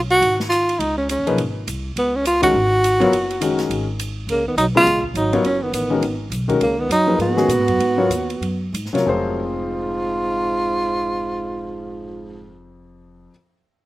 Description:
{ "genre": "modal jazz", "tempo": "176-207 BPM", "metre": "4/4", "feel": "swing 60% on 8ths", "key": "unclear", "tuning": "A4 = 441 Hz", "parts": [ { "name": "upright bass", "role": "bass", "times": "0.0-13.3 s", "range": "F1 to Bb2", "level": "-26 LUFS", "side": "equal", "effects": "none" }, { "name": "breathy tenor saxophone", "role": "melody", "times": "0.1-12.6 s", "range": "Bb3 to Gb4", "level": "-19 LUFS", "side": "right 1 dB", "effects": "none" }, { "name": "open jazz drum kit", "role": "drums", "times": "0.1-9.0 s", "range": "hi-hat, kick drum, ride cymbal, snare drum", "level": "-32 LUFS", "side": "right 2 dB", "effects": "none" }, { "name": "warm baby grand piano", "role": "accompaniment", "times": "1.3-13.3 s", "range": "F2 to Db5", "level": "-21 LUFS", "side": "left 3 dB", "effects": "slapback echo" }, { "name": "breathy trombone", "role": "second line", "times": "4.3-12.6 s", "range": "Ab2 to Cb4", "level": "-26 LUFS", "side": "right 4 dB", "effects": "slapback echo" } ], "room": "little or no reverb", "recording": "recorded outdoors, with no room sound", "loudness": "-17 LUFS", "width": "side -16 dB against mid", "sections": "0.0-4.3 A section; 4.3-9.1 B section; 9.1-11.8 C section", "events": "band accent 2.4; slowing down 6.6-9.1", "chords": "0.0 Dbsus4; 4.3 Db9sus4; 9.1 Fm" }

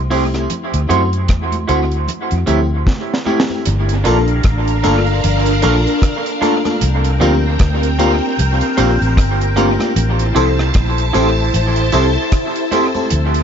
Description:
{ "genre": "lovers rock reggae", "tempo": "76 BPM", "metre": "4/4", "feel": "swing 59% on 16ths", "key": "G dorian", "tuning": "A4 = 440 Hz", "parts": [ { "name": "vintage muted fingered electric bass", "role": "bass", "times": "0.0-13.4 s", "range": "G1 to F#2", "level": "-16 LUFS", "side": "equal", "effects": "none" }, { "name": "FM electric piano with soft pad layer", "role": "accompaniment", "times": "0.1-13.1 s", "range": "A3 to A4", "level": "-20 LUFS", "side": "left 3 dB", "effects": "chorus, dub echo" }, { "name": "electric guitar through a small old amp", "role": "stabs", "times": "0.1-13.0 s", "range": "A3 to C5", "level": "-20 LUFS", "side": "right 4 dB", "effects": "wide subtle chorus, dub echo" }, { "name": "deep reggae drum kit", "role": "drums", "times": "0.1-13.4 s", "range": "hi-hat, kick drum, rim click, snare drum", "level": "-19 LUFS", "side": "equal", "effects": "dub echo" }, { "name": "congas", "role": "percussion", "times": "0.5-13.3 s", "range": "none", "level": "-28 LUFS", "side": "right 4 dB", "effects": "none" }, { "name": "phased string machine", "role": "second line", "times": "3.7-13.4 s", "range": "C4 to A5", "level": "-20 LUFS", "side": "equal", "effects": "ensemble chorus, phaser, dub echo" } ], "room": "light reverb, studio reverb", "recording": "nothing above 7.6 kHz", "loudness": "-13 LUFS", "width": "side -8 dB against mid", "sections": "0.0-3.7 A section; 3.7-13.4 B section", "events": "drum fill 2.9-3.7", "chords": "0.5 D9; 2.1 Fmaj9 (rootless); 3.7 Gm7; 6.8 C7sus4; 10.0 Am7" }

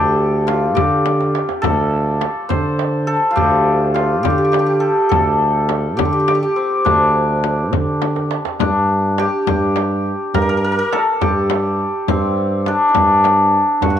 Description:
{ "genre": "Persian modal ensemble", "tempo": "69 BPM (dotted quarters)", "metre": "6/8", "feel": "straight", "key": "D dastgah shur, G avaz esfahan from 8.6 s", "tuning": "A4 = 441 Hz", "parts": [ { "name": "santur", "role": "melody", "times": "0.0-14.0 s", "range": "C4 to C5", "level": "-16 LUFS", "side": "left 1 dB", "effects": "none" }, { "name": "warm tuba", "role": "bass", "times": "0.0-14.0 s", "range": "D2 to D3", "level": "-20 LUFS", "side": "right 1 dB", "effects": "none" }, { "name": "tombak", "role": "percussion", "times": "0.2-14.0 s", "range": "none", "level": "-25 LUFS", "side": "right 6 dB", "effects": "none" }, { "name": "frame drum", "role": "percussion", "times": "0.5-14.0 s", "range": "none", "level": "-24 LUFS", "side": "left 11 dB", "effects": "none" } ], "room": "moderate plate reverb, RT60 2.9 s", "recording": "1960s-style stereo with parts hard left and right", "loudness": "-14 LUFS", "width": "side -9 dB against mid", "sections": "0.0-8.6 A section; 8.6-14.0 B section", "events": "drum fill 1.1-1.6, 8.0-8.6", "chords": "none" }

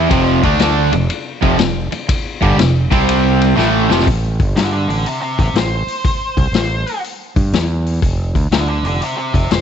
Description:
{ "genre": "blues rock power trio and southern rock", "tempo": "121 BPM", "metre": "4/4", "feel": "swing 66% on 8ths", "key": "A minor", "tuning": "A4 = 440 Hz", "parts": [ { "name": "crunchy overdriven guitar", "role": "riff", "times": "0.0-4.1 s", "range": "F2 to E4", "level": "-14 LUFS", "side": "right 1 dB", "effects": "none" }, { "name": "growling fingered electric bass", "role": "bass", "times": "0.0-9.6 s", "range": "F1 to G2", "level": "-18 LUFS", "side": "right 1 dB", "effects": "overdrive" }, { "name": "vintage drum kit", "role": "drums", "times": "0.1-9.6 s", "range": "hi-hat, kick drum, ride cymbal, snare drum", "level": "-18 LUFS", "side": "left 2 dB", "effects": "none" }, { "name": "octave-fuzz lead guitar", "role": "melody", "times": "4.6-9.6 s", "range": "G4 to D5", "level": "-21 LUFS", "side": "right 1 dB", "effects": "distortion, slapback echo" } ], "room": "studio ambience", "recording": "1960s-style stereo, nothing above 8.0 kHz", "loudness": "-13 LUFS", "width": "side -8 dB against mid", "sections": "0.0-4.1 A section; 4.1-9.6 B section", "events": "drum fill 3.6-4.1; lead electric guitar solo 4.1-9.6", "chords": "0.1 F5; 2.8 C5; 3.6 F5; 4.1 Am; 7.5 N.C.; 8.0 F5" }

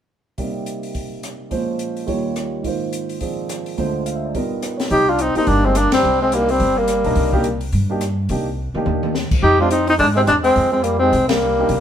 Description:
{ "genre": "jazz, small-group swing and bop", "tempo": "212 BPM", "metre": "4/4", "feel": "swing 60% on 8ths", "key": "C minor", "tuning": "A4 = 440 Hz", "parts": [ { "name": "warm upright piano", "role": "accompaniment", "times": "0.4-11.7 s", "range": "D2 to F5", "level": "-24 LUFS", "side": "right 3 dB", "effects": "none" }, { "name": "open jazz drum kit", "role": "drums", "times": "0.4-11.8 s", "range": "crash cymbal, hi-hat, kick drum, ride cymbal, rim click, snare drum, toms", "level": "-25 LUFS", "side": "left 1 dB", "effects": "none" }, { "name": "breathy tenor saxophone", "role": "melody", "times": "4.9-11.8 s", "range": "Bb3 to G4", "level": "-16 LUFS", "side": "left 1 dB", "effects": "none" }, { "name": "breathy trumpet", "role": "second line", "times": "4.9-11.8 s", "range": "G3 to Eb4", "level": "-24 LUFS", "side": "right 3 dB", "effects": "none" }, { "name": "upright bass", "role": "bass", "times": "4.9-11.8 s", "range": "G1 to Ab2", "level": "-22 LUFS", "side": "equal", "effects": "none" } ], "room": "moderate studio reverb, RT60 1.0 s", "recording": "band playing live in one room", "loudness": "-16 LUFS", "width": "side -9 dB against mid", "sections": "0.4-4.9 A section; 4.9-11.8 B section", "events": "band accent 5.9, 11.3; drum fill 8.6-9.2", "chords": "0.4 Cm9; 1.5 Bbm9; 2.1 Eb7; 2.6 Ab69; 3.8 Dm7b5; 4.3 G7alt; 4.9 Cm7; 9.4 Fm9" }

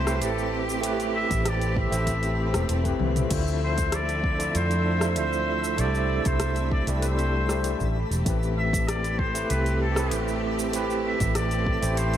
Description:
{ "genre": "sunset chillout", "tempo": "97 BPM", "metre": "4/4", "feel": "straight", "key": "A minor", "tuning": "A4 = 442 Hz", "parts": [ { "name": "trumpet with straight mute", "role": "melody", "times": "0.0-12.2 s", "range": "A4 to E5", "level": "-30 LUFS", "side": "left 1 dB", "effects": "ping-pong delay" }, { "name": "overdriven tine electric piano", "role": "accompaniment", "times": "0.0-12.2 s", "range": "A3 to D5", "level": "-29 LUFS", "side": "moving between left 7 dB and right 8 dB", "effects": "fast tremolo, auto-pan" }, { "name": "clear symphonic string section", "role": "sustained chords", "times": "0.0-12.2 s", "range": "C3 to E5", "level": "-32 LUFS", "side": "left 2 dB", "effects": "none" }, { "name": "vintage muted fingered electric bass", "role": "bass", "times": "0.0-12.2 s", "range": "E1 to F2", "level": "-27 LUFS", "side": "equal", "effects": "none" }, { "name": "twinkling granular texture", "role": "texture", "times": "0.0-12.2 s", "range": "A4 to B5", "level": "-39 LUFS", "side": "right 2 dB", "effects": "built-in reverb" }, { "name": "deep house drum kit", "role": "drums", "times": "0.1-12.2 s", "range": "cabasa, crash cymbal, hi-hat, rim click, toms", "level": "-32 LUFS", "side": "left 1 dB", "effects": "overdrive" }, { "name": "electronic kick drum", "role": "drums", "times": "1.3-11.8 s", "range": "none", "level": "-29 LUFS", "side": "equal", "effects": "overdrive" } ], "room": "light reverb, digital ambience", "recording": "none", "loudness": "-23 LUFS", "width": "side -10 dB against mid", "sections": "0.0-12.2 A section", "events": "drum fill 3.0-3.3", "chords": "0.0 Am9; 3.3 Dm9; 5.8 C6; 8.0 Am9" }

